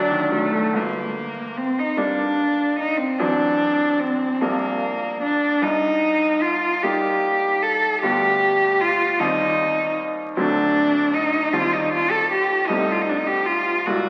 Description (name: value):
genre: classical, romantic duo for cello and grand piano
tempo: 50 BPM (dotted quarters)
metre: 6/8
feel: rubato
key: G minor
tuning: A4 = 440 Hz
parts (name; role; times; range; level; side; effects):
- rich cello; melody; 0.0-14.1 s; A3 to A4; -22 LUFS; equal; none
- bright baby grand piano; accompaniment; 0.0-14.1 s; G1 to F4; -28 LUFS; equal; none
room: wet concert hall reverb, RT60 2.2 s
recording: very old 78 rpm record, vinyl crackle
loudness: -21 LUFS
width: mono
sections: 0.7-14.1 A section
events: none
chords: 0.0 D; 0.7 Gm; 3.2 D7/A; 4.4 Gm/Bb; 5.6 Cm7; 8.0 G7/D; 9.2 Cm/Eb; 10.4 D7; 11.5 Eb6; 12.7 Cm6